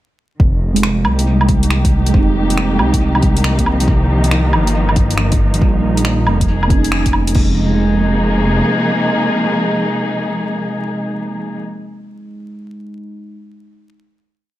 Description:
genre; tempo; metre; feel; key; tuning
future garage; 138 BPM; 4/4; swing 66% on 16ths; F minor; A4 = 439 Hz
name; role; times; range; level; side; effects
dark studio string section; sustained chords; 0.4-11.6 s; C3 to Ab4; -19 LUFS; left 1 dB; sidechain pumping
dark detuned saw bass; bass; 0.4-8.6 s; F1 to C2; -16 LUFS; equal; sidechain pumping
electronic kick drum; drums; 0.4-7.5 s; none; -15 LUFS; equal; none
muted felt-like synth keys; accompaniment; 0.7-13.4 s; G3 to Eb4; -20 LUFS; right 3 dB; chorus, tremolo, sidechain pumping, analog delay
deep house drum kit; drums; 0.8-7.5 s; crash cymbal, finger snaps, hi-hat, woodblock; -21 LUFS; right 1 dB; none
room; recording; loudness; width
light reverb; echo-heavy mix, vinyl crackle; -12 LUFS; side -15 dB against mid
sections
0.4-7.4 groove; 7.4-10.8 final chord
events
band accent 6.9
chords
0.4 Fm7; 3.9 Cm7; 5.6 Bbm7; 7.4 Fm7

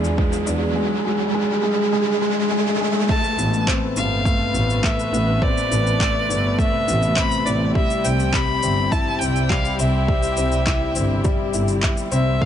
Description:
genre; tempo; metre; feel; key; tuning
piano and strings electronica; 103 BPM; 4/4; straight; A minor; A4 = 439 Hz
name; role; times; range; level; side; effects
muted chamber string section; sustained chords; 0.0-12.5 s; C3 to B4; -31 LUFS; left 2 dB; sidechain pumping
felt-muted upright piano; riff; 0.0-12.5 s; G3 to E5; -23 LUFS; left 2 dB; ping-pong delay
warm symphonic double bass section; bass; 0.0-12.3 s; G1 to E2; -23 LUFS; right 1 dB; sidechain pumping
electronic shaker and handclaps; drums; 0.0-12.2 s; none; -28 LUFS; left 1 dB; overdrive, small room ambience
riser; sound effects; 0.0-3.1 s; none; -25 LUFS; right 2 dB; none
electronic kick drum; drums; 0.2-12.5 s; none; -22 LUFS; equal; overdrive, small room ambience
rich violin; melody; 3.1-12.5 s; D5 to B5; -23 LUFS; equal; none
room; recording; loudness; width
light reverb; nothing above 10.5 kHz; -17 LUFS; side -10 dB against mid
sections
0.0-3.1 A section; 3.1-12.5 B section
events
build-up 0.0-3.1; riser 0.0-3.1; drop 3.1-12.5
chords
0.0 E; 3.1 Amadd9; 7.8 C

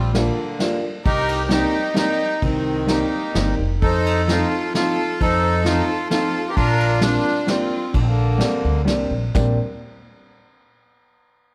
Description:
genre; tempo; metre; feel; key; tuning
musette waltz; 131 BPM; 3/4; rubato; Bb major; A4 = 439 Hz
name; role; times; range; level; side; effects
accordion; melody; 0.0-8.8 s; D3 to A4; -25 LUFS; equal; none
rich violin; second line; 0.0-8.8 s; D4 to C5; -31 LUFS; equal; none
upright bass; bass; 0.0-9.6 s; F1 to F2; -24 LUFS; equal; none
warm upright piano; accompaniment; 0.1-9.6 s; F3 to F4; -26 LUFS; equal; none
vintage brush drum kit; drums; 0.1-9.5 s; kick drum, ride cymbal, snare drum, splash cymbal, toms; -28 LUFS; equal; none
room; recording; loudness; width
moderate recital hall reverb, RT60 1.7 s; none; -20 LUFS; mono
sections
0.0-9.3 A section; 9.3-10.7 B section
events
none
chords
0.0 Bb6; 1.0 Cm7; 3.8 F7; 6.6 Bb69

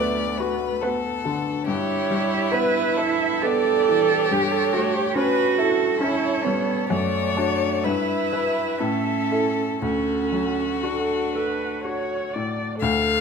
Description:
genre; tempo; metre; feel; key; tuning
classical, slow romantic movement for piano quartet; 59-72 BPM; 3/4; rubato; D major; A4 = 440 Hz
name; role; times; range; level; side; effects
clear violin; melody; 0.0-13.2 s; F#4 to F5; -27 LUFS; left 10 dB; none
warm cello; second line; 0.0-11.8 s; A3 to A4; -24 LUFS; right 8 dB; none
bright grand piano; accompaniment; 0.0-13.2 s; D2 to B4; -26 LUFS; left 2 dB; none
warm viola; accompaniment; 0.0-13.2 s; A4 to E5; -28 LUFS; right 2 dB; none
room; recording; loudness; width
moderate recital hall reverb, RT60 1.4 s; minimal, uncompressed stereo recording; -20 LUFS; side -5 dB against mid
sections
0.0-12.8 A section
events
none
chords
0.0 Bm/D; 1.7 Em/G; 4.3 A7/G; 6.9 D/F#; 7.8 Em/G; 8.8 A; 9.8 D

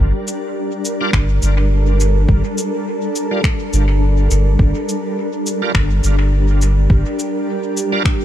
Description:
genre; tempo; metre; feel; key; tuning
ambient dub; 104 BPM; 4/4; swing 55% on 16ths; G minor; A4 = 439 Hz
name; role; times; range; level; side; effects
granular cloud pad; sustained chords; 0.0-8.2 s; G3 to Bb4; -20 LUFS; equal; built-in reverb
soft dub sub bass; bass; 0.0-7.0 s; G1; -14 LUFS; equal; none
electronic cabasa and finger snaps; drums; 0.3-8.2 s; none; -26 LUFS; left 1 dB; dub echo
bright tonewheel organ; stabs; 1.0-8.0 s; G3 to Bb4; -27 LUFS; right 2 dB; overdrive, chorus vibrato, slow rotary speaker, dub echo
electronic kick drum; drums; 1.1-8.2 s; none; -16 LUFS; equal; none
room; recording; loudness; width
little or no reverb; none; -14 LUFS; side -12 dB against mid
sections
0.0-8.2 A section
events
none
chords
0.0 Gm

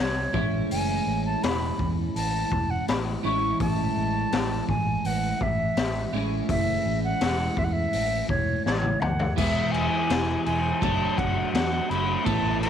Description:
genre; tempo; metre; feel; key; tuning
psychedelic rock; 83 BPM; 4/4; straight; unclear; A4 = 440 Hz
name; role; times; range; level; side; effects
concert flute; melody; 0.0-12.7 s; C#5 to C#6; -28 LUFS; equal; tape echo
twelve-string electric guitar; riff; 0.0-12.7 s; A2 to C#5; -29 LUFS; right 2 dB; flanger, double-tracked left and right
fingered electric bass; bass; 0.0-12.7 s; E1 to E2; -30 LUFS; right 1 dB; transformer saturation
raw garage drum kit; drums; 0.3-12.7 s; crash cymbal, hi-hat, kick drum, snare drum, toms; -28 LUFS; left 4 dB; none
room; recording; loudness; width
studio ambience; 1960s-style stereo; -23 LUFS; side -8 dB against mid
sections
0.0-9.4 A section; 9.4-12.7 B section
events
drum fill 8.7-9.4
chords
0.3 Amaj7; 9.4 E; 10.8 Dmaj7/F#

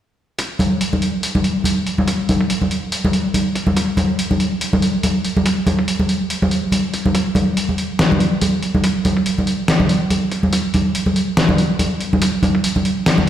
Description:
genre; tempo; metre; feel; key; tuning
dubstep; 142 BPM; 4/4; swing 57% on 16ths, half-time; none; none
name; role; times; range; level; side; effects
electronic kick drum; drums; 0.4-12.6 s; none; -28 LUFS; left 1 dB; high-pass filter on kick, studio ambience
trip hop sampler-style drum kit; drums; 0.4-13.3 s; hi-hat, snare drum; -21 LUFS; left 1 dB; studio ambience
congas; percussion; 0.6-13.3 s; none; -16 LUFS; equal; dub echo
room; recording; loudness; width
wet echo chamber reverb, RT60 1.8 s, digital ambience; played on a big sound system in a bare room, stone room reverb; -15 LUFS; side -11 dB against mid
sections
0.4-13.3 A section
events
none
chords
none

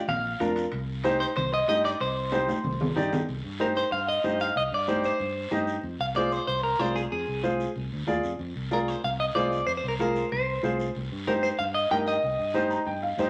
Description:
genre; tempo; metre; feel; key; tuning
latin, cumbia; 188 BPM; 4/4; straight; C minor; A4 = 439 Hz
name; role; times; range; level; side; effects
clean electric guitar; melody; 0.0-13.3 s; Ab4 to G5; -30 LUFS; equal; spring reverb
fingered electric bass; bass; 0.1-13.3 s; Bb1 to G2; -37 LUFS; equal; none
congas; percussion; 0.1-13.3 s; none; -38 LUFS; equal; none
guiro; percussion; 0.1-13.3 s; none; -48 LUFS; equal; none
timbales; percussion; 0.1-3.2 s; none; -39 LUFS; equal; none
bright upright piano; accompaniment; 0.4-13.3 s; D4 to Bb5; -30 LUFS; equal; none
room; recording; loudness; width
wet studio ambience, RT60 0.5 s; vinyl crackle; -27 LUFS; mono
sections
0.0-3.3 A section; 3.3-13.3 B section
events
drum fill 2.3-3.3; upright piano fill 12.5-13.3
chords
0.0 Bb; 0.7 Cm; 5.8 Fm; 11.0 Cm

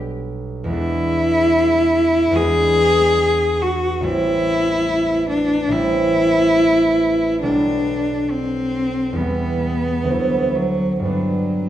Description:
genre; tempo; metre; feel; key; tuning
classical, romantic duo for cello and harp; 70 BPM; 4/4; rubato; G major; A4 = 442 Hz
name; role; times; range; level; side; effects
concert harp; accompaniment; 0.0-11.7 s; A1 to E4; -22 LUFS; right 2 dB; none
rich cello; melody; 0.7-11.7 s; F#3 to G#4; -17 LUFS; left 1 dB; none
room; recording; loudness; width
wet recital hall reverb, RT60 1.5 s; minimal, uncompressed stereo recording; -16 LUFS; side -11 dB against mid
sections
0.0-11.7 A section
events
none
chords
0.0 G/B; 0.7 E7; 4.0 Am7; 7.4 G/B; 9.2 Em; 10.1 D13; 11.0 G

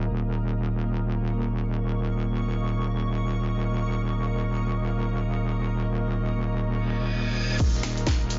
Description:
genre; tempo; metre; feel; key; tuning
bass house; free time; none; none; unclear; A4 = 441 Hz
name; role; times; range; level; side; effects
wobble bass; bass; 0.0-8.4 s; Eb1; -28 LUFS; equal; chorus, overdrive, sidechain pumping
granular cloud pad; texture; 0.0-8.4 s; Bb3 to Eb6; -36 LUFS; equal; built-in reverb, sidechain pumping
reverse cymbal; sound effects; 6.9-7.6 s; none; -35 LUFS; equal; none
electronic kick drum; drums; 7.6-8.2 s; none; -26 LUFS; equal; studio reverb
house drum kit; drums; 7.6-8.4 s; crash cymbal, finger snaps, hi-hat, snare drum; -34 LUFS; equal; studio reverb
egg shaker; percussion; 7.6-8.4 s; none; -44 LUFS; equal; none
room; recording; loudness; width
digital ambience; nothing above 7.5 kHz; -27 LUFS; mono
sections
0.0-7.6 A section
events
reverse cymbal 6.9-7.6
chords
0.0 Eb5

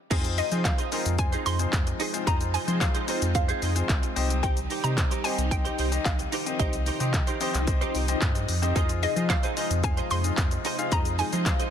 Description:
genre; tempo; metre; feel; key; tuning
dance-pop; 111 BPM; 4/4; straight; F minor; A4 = 440 Hz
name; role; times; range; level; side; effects
clear baby grand piano; accompaniment; 0.1-11.6 s; C4 to F5; -33 LUFS; left 5 dB; sidechain pumping
phased string machine; sustained chords; 0.1-11.7 s; C3 to Eb4; -34 LUFS; equal; ensemble chorus, phaser, sidechain pumping
direct-recorded clean electric guitar; riff; 0.1-11.7 s; Eb4 to C5; -33 LUFS; right 8 dB; ensemble chorus
warm sub bass; bass; 0.1-11.5 s; C2 to F3; -28 LUFS; equal; sidechain pumping
pop drum kit; drums; 0.1-11.7 s; crash cymbal, handclaps, hi-hat, kick drum, shaker; -27 LUFS; equal; none
hollow square pluck; melody; 0.4-11.7 s; Eb5 to C6; -32 LUFS; equal; chorus, ping-pong delay
room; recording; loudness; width
digital ambience; dense, heavily limited modern master; -23 LUFS; side -9 dB against mid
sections
0.1-11.7 A section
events
none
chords
0.1 Fm7; 4.2 Cm; 8.8 Fm7

